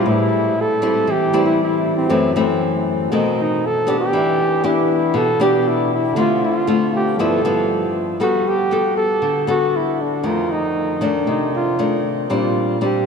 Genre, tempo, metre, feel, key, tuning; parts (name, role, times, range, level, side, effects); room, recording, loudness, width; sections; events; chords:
bossa nova; 118 BPM; 4/4; straight; A4 = 436 Hz
mellow flugelhorn; melody; 0.0-13.1 s; C4 to A4; -20 LUFS; right 1 dB
nylon-string guitar; accompaniment; 0.0-13.1 s; F2 to A4; -18 LUFS; left 2 dB
warm concert grand piano; accompaniment; 0.0-8.2 s; D3 to E5; -28 LUFS; right 3 dB
wet cathedral reverb, RT60 5.8 s; in a vast, echoing space; -16 LUFS; side -5 dB against mid
0.0-8.2 A section; 8.2-13.1 B section
0.1 Am7; 2.1 F#m7b5; 3.1 B7b9; 4.1 Em7; 6.2 Dm7; 7.2 G13; 8.2 Gmaj9; 10.2 F6; 12.3 Bb69